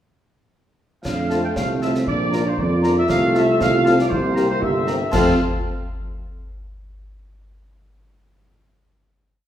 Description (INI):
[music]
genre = military-style march for wind band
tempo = 118 BPM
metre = 2/4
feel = straight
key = F major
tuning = A4 = 438 Hz
[part]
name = dark trumpet section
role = melody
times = 1.0-5.3 s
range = C5 to G5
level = -24 LUFS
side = left 1 dB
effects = none
[part]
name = mellow trombone section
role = sustained chords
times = 1.0-5.3 s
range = F3 to C4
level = -27 LUFS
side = right 1 dB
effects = none
[part]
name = dark euphonium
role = second line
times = 1.1-4.9 s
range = C4 to G4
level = -23 LUFS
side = right 2 dB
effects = none
[part]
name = warm tuba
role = bass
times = 1.1-5.3 s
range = G1 to F2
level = -23 LUFS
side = right 1 dB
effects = none
[part]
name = concert snare drum, clash cymbals and concert bass drum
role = drums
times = 1.1-5.4 s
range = none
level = -28 LUFS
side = left 1 dB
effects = none
[part]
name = mellow woodwind section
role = second line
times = 1.3-5.3 s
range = F4 to Bb5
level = -29 LUFS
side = equal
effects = none
[part]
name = dark French horn section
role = accompaniment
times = 1.3-5.3 s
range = C4 to Bb4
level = -26 LUFS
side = left 3 dB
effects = none
[sound]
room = wet recital hall reverb, RT60 1.7 s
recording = recorded in a church or concert hall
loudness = -17 LUFS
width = side -10 dB against mid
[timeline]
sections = 1.1-5.1 A section; 5.1-6.1 final chord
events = none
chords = 1.1 F; 2.1 Bb; 3.1 F/C; 4.1 C7; 5.1 F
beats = | 1.05 1.56 | 2.08 2.58 | 3.09 3.60 | 4.11 4.62 | 5.13